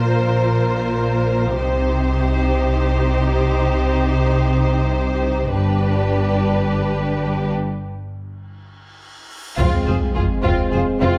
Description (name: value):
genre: cinematic, epic orchestral film score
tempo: free time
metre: none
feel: none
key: unclear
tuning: A4 = 440 Hz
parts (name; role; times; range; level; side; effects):
- warm symphonic violin section; melody; 0.0-11.2 s; F4 to C5; -28 LUFS; equal; none
- warm symphonic violin section; second line; 0.0-11.2 s; C4 to Bb4; -29 LUFS; equal; none
- warm symphonic viola section; accompaniment; 0.0-11.2 s; D4 to F4; -29 LUFS; equal; none
- rich symphonic double bass section; bass; 0.0-11.1 s; F1 to C2; -24 LUFS; equal; none
- warm symphonic cello section; bass; 0.0-11.1 s; F2 to C3; -25 LUFS; equal; none
- cymbal swell and sub drop; sound effects; 9.0-11.2 s; none; -29 LUFS; equal; none
- mellow French horn section; sustained chords; 9.6-11.2 s; Ab3 to C4; -26 LUFS; equal; none
- taiko ensemble; drums; 9.6-10.7 s; none; -26 LUFS; equal; none
room: wet scoring stage reverb, RT60 1.4 s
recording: none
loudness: -19 LUFS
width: mono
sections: 0.0-9.6 A section; 9.6-11.2 B section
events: break 7.6-9.6; cymbal swell 9.0-9.6; impact 9.6-11.2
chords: 0.0 Bbsus2; 1.6 Cm; 5.5 G; 7.6 N.C.; 9.6 Fm